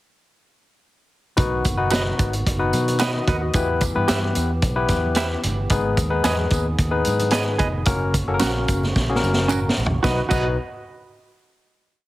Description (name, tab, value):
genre	uptempo 1960s-style soul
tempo	111 BPM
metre	4/4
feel	straight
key	B major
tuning	A4 = 440 Hz
part	barky tine electric piano	accompaniment	1.4-10.6 s	B1 to F#5	-24 LUFS	left 3 dB	none
part	tonewheel organ	sustained chords	1.4-10.3 s	C#3 to G#4	-31 LUFS	right 1 dB	fast rotary speaker, overdrive
part	vintage muted fingered electric bass	bass	1.4-10.6 s	E#1 to B2	-25 LUFS	equal	none
part	vintage drum kit	drums	1.4-10.4 s	crash cymbal, hi-hat, kick drum, snare drum, toms	-23 LUFS	equal	none
part	congas	percussion	1.4-10.6 s	none	-35 LUFS	right 2 dB	none
part	tambourine and handclaps	percussion	1.4-10.6 s	none	-33 LUFS	right 1 dB	none
part	semi-hollow electric guitar	stabs	1.9-10.5 s	C#4 to E5	-26 LUFS	right 4 dB	none
room	light reverb, small room ambience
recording	heavily compressed radio sound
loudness	-18 LUFS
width	side -16 dB against mid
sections	1.4-10.0 verse; 10.0-12.1 final chord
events	drum fill 9.0-10.0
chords	1.4 B; 3.6 Em; 5.7 G#m; 7.9 F#; 10.0 B